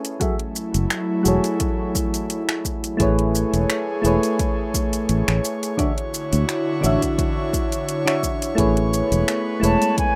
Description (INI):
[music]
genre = sunset chillout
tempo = 86 BPM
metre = 4/4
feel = swing 54% on 16ths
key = A major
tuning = A4 = 441 Hz
[part]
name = soft electric-piano-like synth keys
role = accompaniment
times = 0.0-10.2 s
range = D3 to E5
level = -25 LUFS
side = equal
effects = chorus, low-pass filter, digital delay
[part]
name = airy breathy pad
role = sustained chords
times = 0.0-10.2 s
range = D3 to C#5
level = -28 LUFS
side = equal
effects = chorus
[part]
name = deep house drum kit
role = drums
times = 0.0-10.1 s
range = finger snaps, hi-hat, shaker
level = -28 LUFS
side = equal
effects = overdrive
[part]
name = electronic kick drum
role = drums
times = 0.2-10.1 s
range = none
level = -28 LUFS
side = equal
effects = overdrive
[part]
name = fingered electric bass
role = bass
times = 0.7-9.8 s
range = E1 to D2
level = -23 LUFS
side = equal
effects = none
[part]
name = mellow silver concert flute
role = melody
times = 9.6-10.2 s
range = G#5 to A5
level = -23 LUFS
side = equal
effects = none
[sound]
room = wet small room reverb, RT60 0.5 s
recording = rough home demo mix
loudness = -21 LUFS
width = mono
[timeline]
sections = 0.0-10.2 A section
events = filter sweep on synth keys 0.0-10.2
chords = 0.2 F#m7; 3.0 Amaj9; 5.8 Dmaj9; 8.6 Amaj9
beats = | 0.21 0.91 1.60 2.30 | 3.00 3.70 4.39 5.09 | 5.79 6.49 7.19 7.88 | 8.58 9.28 9.98